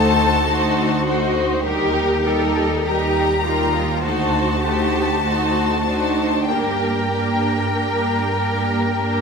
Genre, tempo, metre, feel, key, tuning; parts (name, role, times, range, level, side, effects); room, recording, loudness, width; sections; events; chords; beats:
classical, slow romantic movement for string orchestra; 47-52 BPM; 4/4; rubato; G minor; A4 = 441 Hz
rich studio violin section; melody; 0.0-9.2 s; Bb4 to Bb5; -24 LUFS; left 5 dB
rich studio violin section; second line; 0.0-9.2 s; F#4 to C5; -23 LUFS; left 2 dB
clear symphonic viola section; accompaniment; 0.0-9.2 s; G3 to Eb4; -23 LUFS; right 1 dB
rich studio cello section; bass; 0.0-9.2 s; D4 to Bb4; -24 LUFS; right 1 dB
rich studio double bass section; bass; 0.0-9.2 s; D2 to G2; -24 LUFS; right 3 dB
moderate scoring stage reverb, RT60 1.6 s; -17 LUFS; side -5 dB against mid
0.0-9.2 A section
0.0 D7b9; 1.7 Eb; 4.0 D7b9; 6.5 Gm
0.48 | 1.65 2.87 4.04 5.24 | 6.49 7.74 8.97